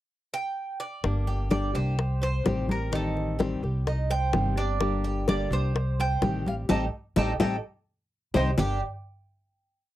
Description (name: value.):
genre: latin, Cuban son and guajira.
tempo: 127 BPM.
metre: 4/4.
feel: straight.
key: G minor.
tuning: A4 = 439 Hz.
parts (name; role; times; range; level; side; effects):
Cuban tres; melody; 0.3-8.8 s; A4 to A5; -32 LUFS; right 2 dB; none.
flamenco guitar; accompaniment; 1.0-8.8 s; G2 to G4; -31 LUFS; left 3 dB; none.
upright bass; bass; 1.0-8.8 s; G1 to C2; -28 LUFS; equal; none.
bongos; percussion; 1.0-8.7 s; none; -28 LUFS; left 6 dB; none.
congas; percussion; 1.0-8.7 s; none; -29 LUFS; equal; none.
Cuban tres; arpeggios; 1.3-8.8 s; G3 to D5; -34 LUFS; right 3 dB; none.
room: little or no reverb.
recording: dry, close 1970s-style studio recording.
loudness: -25 LUFS.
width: side -14 dB against mid.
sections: 0.0-1.0 pickup bar; 1.0-8.6 montuno (vamp); 8.6-10.0 final chord.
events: band accent 6.7-8.6; drum fill 7.9-8.6.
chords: 0.0 N.C.; 1.0 Gm; 2.0 Am7b5; 3.9 Cm; 4.8 Gm; 5.8 Am7b5; 7.6 Cm; 8.6 Gm.